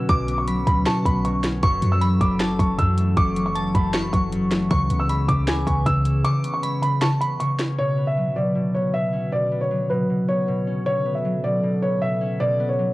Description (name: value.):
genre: hip hop, trap.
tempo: 156 BPM.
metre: 4/4.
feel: half-time.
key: unclear.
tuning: A4 = 439 Hz.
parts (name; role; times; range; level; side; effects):
dark concert grand piano; melody; 0.0-12.9 s; B4 to E6; -25 LUFS; equal; cassette tape.
concert harp; accompaniment; 0.0-12.9 s; F#2 to C#4; -23 LUFS; equal; cassette tape.
dark analog pad; sustained chords; 0.0-12.9 s; C#3 to B4; -31 LUFS; left 1 dB; chorus, cassette tape.
glassy synth bell; second line; 0.1-7.7 s; G#5 to D6; -31 LUFS; equal; chorus, phaser, cassette tape, analog delay.
clean 808-style bass; bass; 0.1-6.2 s; E1 to F#2; -25 LUFS; equal; none.
trap drum kit; drums; 0.1-7.7 s; hi-hat, kick drum, snare drum; -23 LUFS; equal; cassette tape.
room: light reverb.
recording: home recording on cassette.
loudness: -19 LUFS.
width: side -18 dB against mid.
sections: 0.0-7.8 A section; 7.8-12.9 B section.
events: kick muted 6.2-7.8.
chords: 0.0 Bmadd9; 1.6 F#m7; 4.7 C#m7; 7.8 Bmadd9.